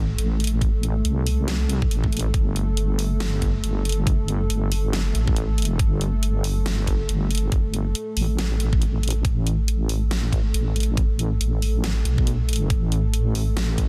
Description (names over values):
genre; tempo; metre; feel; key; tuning
deep dubstep; 139 BPM; 4/4; swing 59% on 16ths, half-time; unclear; A4 = 436 Hz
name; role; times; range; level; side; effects
dark analog pad; sustained chords; 0.0-13.9 s; A3 to A4; -34 LUFS; equal; chorus
deep soft wobble bass; bass; 0.0-13.9 s; G1 to C2; -24 LUFS; equal; chorus, tube saturation
dubstep drum kit; drums; 0.2-13.9 s; hi-hat, snare drum; -33 LUFS; equal; none
electronic kick drum; drums; 0.6-13.9 s; none; -24 LUFS; equal; none
room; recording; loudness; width
digital ambience; dense, heavily limited modern master; -23 LUFS; mono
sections
0.0-13.9 A section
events
none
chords
0.0 Am; 2.3 Gsus2; 9.2 N.C.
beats
0.18 | 0.61 1.05 1.48 1.91 | 2.34 2.77 3.20 3.63 | 4.07 4.50 4.93 5.36 | 5.79 6.22 6.66 7.09 | 7.52 7.95 8.38 8.81 | 9.25 9.68 10.11 10.54 | 10.97 11.40 11.84 12.27 | 12.70 13.13 13.56